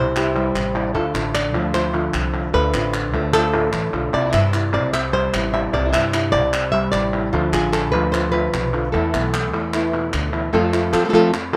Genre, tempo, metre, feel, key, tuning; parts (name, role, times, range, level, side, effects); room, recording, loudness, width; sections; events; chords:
flamenco; 150 BPM; 4/4; straight; A4 = 440 Hz
flamenco guitar; melody; 0.0-11.6 s; A2 to E5; -22 LUFS; equal
flamenco guitar; stabs; 0.0-11.6 s; C3 to F4; -28 LUFS; equal
upright bass; bass; 0.0-11.6 s; A1 to F3; -27 LUFS; equal
palmas hand claps; percussion; 0.2-11.6 s; -27 LUFS; equal
moderate stone room reverb, RT60 1.2 s; -20 LUFS; mono
0.0-10.5 A section; 10.5-11.6 B section
0.0 Cadd9; 0.9 Dm7; 4.1 Cadd9; 7.3 Dm7; 8.9 Esus4; 10.5 F